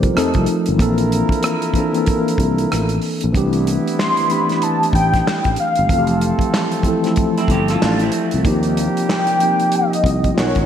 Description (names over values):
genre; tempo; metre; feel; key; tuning
R&B, neo-soul; 94 BPM; 4/4; swing 60% on 16ths; unclear; A4 = 439 Hz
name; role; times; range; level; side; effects
mellow tine electric piano; accompaniment; 0.0-10.7 s; E3 to Eb5; -19 LUFS; left 1 dB; medium stereo tremolo
sustaining fretless electric bass; bass; 0.0-10.7 s; F1 to F2; -19 LUFS; equal; none
damped 70s drum kit; drums; 0.0-10.7 s; handclaps, hi-hat, kick drum, rim click, snare drum; -22 LUFS; equal; none
mellow horn section; stabs; 0.2-10.7 s; C3 to Bb4; -25 LUFS; right 2 dB; none
warm velvety synth lead; melody; 4.0-10.7 s; C#5 to C6; -19 LUFS; left 1 dB; chorus, analog delay
electric guitar through a small old amp; second line; 7.4-8.4 s; C4 to A4; -24 LUFS; right 3 dB; analog chorus, analog delay
room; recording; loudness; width
moderate lush hall reverb, RT60 1.9 s, studio reverb; dreamy mix soaked in reverb, vinyl crackle; -15 LUFS; side -9 dB against mid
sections
0.0-10.7 A section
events
none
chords
0.2 F7; 0.8 Bbmaj9#11; 3.3 C69; 5.9 Fmaj9; 8.4 Eb69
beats
0.15 | 0.79 1.43 2.07 2.71 | 3.34 3.98 4.62 5.26 | 5.90 6.54 7.17 7.81 | 8.45 9.09 9.73 10.37